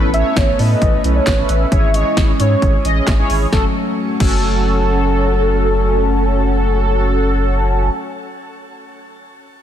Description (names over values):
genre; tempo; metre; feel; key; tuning
synth-pop; 133 BPM; 4/4; straight; F# dorian; A4 = 440 Hz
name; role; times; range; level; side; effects
mellow synth brass; accompaniment; 0.0-7.9 s; C#4 to D#5; -20 LUFS; equal; chorus, phaser, shimmer reverb
chorused pulse-width pad; sustained chords; 0.0-7.9 s; E3 to C#4; -24 LUFS; left 1 dB; shimmer reverb
saturated sub bass; bass; 0.0-7.9 s; F#1 to A2; -17 LUFS; equal; none
warm velvety synth lead; melody; 0.1-7.9 s; A4 to E5; -21 LUFS; equal; chorus, ping-pong delay, shimmer reverb
punchy analog drum machine; drums; 0.1-4.3 s; crash cymbal, handclaps, hi-hat, kick drum, snare drum; -17 LUFS; equal; none
room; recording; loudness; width
light reverb; dense, heavily limited modern master; -13 LUFS; side -10 dB against mid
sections
0.0-3.5 A section; 3.5-7.1 B section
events
none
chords
0.0 Aadd9; 1.7 C#m/G#; 3.5 F#m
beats
0.37 0.82 1.27 | 1.72 2.17 2.62 3.07 | 3.52 3.98 4.43 4.88 | 5.33 5.78 6.23 6.68